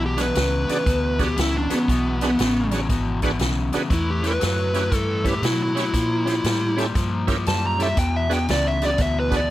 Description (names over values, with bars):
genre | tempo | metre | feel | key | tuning
electric blues shuffle | 118 BPM | 4/4 | swing 65% on 8ths | unclear | A4 = 440 Hz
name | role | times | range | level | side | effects
overdriven electric guitar | riff | 0.0-9.5 s | E2 to G3 | -26 LUFS | left 4 dB | none
vintage muted fingered electric bass | bass | 0.0-9.5 s | G#1 to B2 | -25 LUFS | equal | none
dark smooth lead guitar | melody | 0.1-9.5 s | B3 to A#5 | -24 LUFS | equal | overdrive
bright tonewheel organ | accompaniment | 0.2-9.4 s | C#4 to D5 | -28 LUFS | right 4 dB | overdrive, chorus vibrato, slow rotary speaker
swinging big-band drum kit | drums | 0.2-9.4 s | hi-hat, kick drum, snare drum | -26 LUFS | equal | none
room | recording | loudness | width
moderate studio reverb, RT60 0.8 s | none | -19 LUFS | side -14 dB against mid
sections
0.0-9.5 A section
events
none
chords
0.0 E9; 3.9 A9; 5.9 A#dim7; 8.0 E9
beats
0.36 0.86 1.37 | 1.88 2.39 2.90 3.40 | 3.91 4.42 4.93 5.43 | 5.94 6.45 6.96 7.47 | 7.97 8.48 8.99 9.50